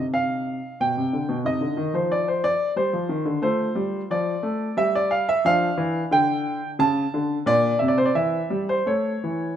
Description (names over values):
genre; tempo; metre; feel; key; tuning
classical, baroque-style suite movement for grand piano; 90 BPM; 3/4; uneven beats, rubato; D minor from 3.4 s; A4 = 440 Hz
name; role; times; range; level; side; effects
warm baby grand piano; solo; 0.0-9.5 s; Bb2 to A5; -21 LUFS; equal; none
room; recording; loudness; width
light reverb; minimal, uncompressed stereo recording; -21 LUFS; side -9 dB against mid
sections
0.0-9.6 A section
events
none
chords
0.0 Cm; 0.8 G/B; 1.4 Cm; 3.4 F; 4.8 N.C.; 5.4 Dm; 6.8 A/C#; 7.5 Bb; 8.2 Em; 8.9 A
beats
0.14 0.80 | 1.45 2.10 2.75 | 3.42 4.10 4.76 | 5.43 6.10 6.78 | 7.46 8.15 8.87